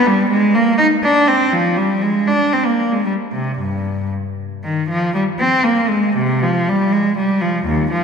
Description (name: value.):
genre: classical, baroque-style suite movement for unaccompanied cello.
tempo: 110-125 BPM.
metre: 3/4.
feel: rubato.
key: C minor.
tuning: A4 = 437 Hz.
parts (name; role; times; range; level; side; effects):
clear cello; solo; 0.0-8.0 s; Eb2 to Eb4; -14 LUFS; equal; none.
room: wet church reverb, RT60 3.2 s.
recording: minimal, uncompressed stereo recording.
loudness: -14 LUFS.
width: side -6 dB against mid.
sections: 0.0-4.6 A section; 4.6-8.0 A section.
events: none.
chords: none.